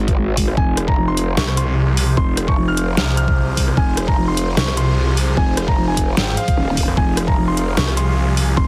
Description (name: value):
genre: heavy wobble dubstep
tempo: 150 BPM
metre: 4/4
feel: swing 54% on 16ths, half-time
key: F minor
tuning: A4 = 440 Hz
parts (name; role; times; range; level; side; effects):
- growl bass; bass; 0.0-8.7 s; Eb1 to Ab1; -21 LUFS; equal; chorus, overdrive
- dubstep drum kit; drums; 0.1-8.5 s; hi-hat, rim click, snare drum; -24 LUFS; equal; overdrive
- electronic kick drum; drums; 0.1-8.7 s; none; -21 LUFS; equal; none
- dark concert grand piano; melody; 0.6-8.7 s; F5 to F6; -28 LUFS; equal; digital delay
- supersaw pad; sustained chords; 0.6-8.7 s; F3 to F5; -30 LUFS; equal; phaser, sidechain pumping
- snarling distorted saw bass; bass; 1.4-8.6 s; F1 to C2; -20 LUFS; equal; distortion, overdrive
room: light reverb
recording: heavily compressed radio sound, multiband compression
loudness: -17 LUFS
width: mono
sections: 0.0-8.7 A section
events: none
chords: 0.0 Fm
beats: 0.17 | 0.57 0.97 1.37 1.77 | 2.17 2.57 2.97 3.37 | 3.77 4.17 4.57 4.97 | 5.37 5.77 6.17 6.57 | 6.97 7.37 7.77 8.17 | 8.57